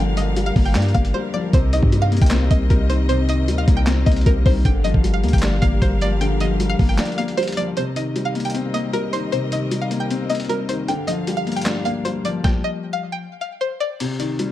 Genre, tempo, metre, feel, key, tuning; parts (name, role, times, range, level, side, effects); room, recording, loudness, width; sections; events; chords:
hip hop, trap; 154 BPM; 4/4; half-time; C minor; A4 = 442 Hz
string-like resonator pluck; melody; 0.0-14.0 s; Bb4 to G5; -26 LUFS; equal; chorus, phaser, digital delay
dark concert grand piano; accompaniment; 0.0-14.5 s; C3 to D4; -23 LUFS; left 3 dB
warm symphonic string section; sustained chords; 0.0-12.4 s; G2 to F5; -30 LUFS; equal
warm 808-style bass; bass; 0.0-7.0 s; G1 to G2; -19 LUFS; equal
boom bap sampler-style drum kit; drums; 0.2-14.5 s; crash cymbal, handclaps, hi-hat, kick drum, rim click, snare drum; -20 LUFS; equal
light reverb; dark, warm production; -17 LUFS; side -13 dB against mid
0.0-7.8 A section; 7.8-14.0 B section
break 1.1-1.5, 7.0-7.8; kick muted 14.0-14.5
0.0 Gm7; 1.5 Cm7; 4.7 Gm7; 7.8 Cm7; 10.9 Gm7; 14.0 Cm